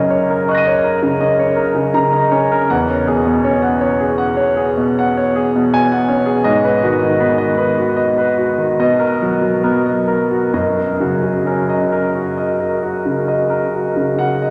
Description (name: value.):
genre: classical, impressionist solo piano.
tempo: 64-83 BPM.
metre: 5/4.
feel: rubato.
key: F# mixolydian.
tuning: A4 = 440 Hz.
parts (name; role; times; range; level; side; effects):
clear concert grand piano; solo; 0.0-14.5 s; E2 to D#7; -16 LUFS; equal; none.
room: wet cathedral reverb, RT60 4.2 s.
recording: none.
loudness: -16 LUFS.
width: mono.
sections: 0.0-14.5 A section.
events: none.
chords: 0.0 F#6; 2.7 E69; 6.5 G#m7; 8.8 Bmaj7; 10.5 F#6.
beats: 0.47 1.20 1.94 | 2.71 3.44 4.19 4.96 5.72 | 6.46 7.21 7.98 8.80 9.64 | 10.53 11.46 12.37 13.28 14.19.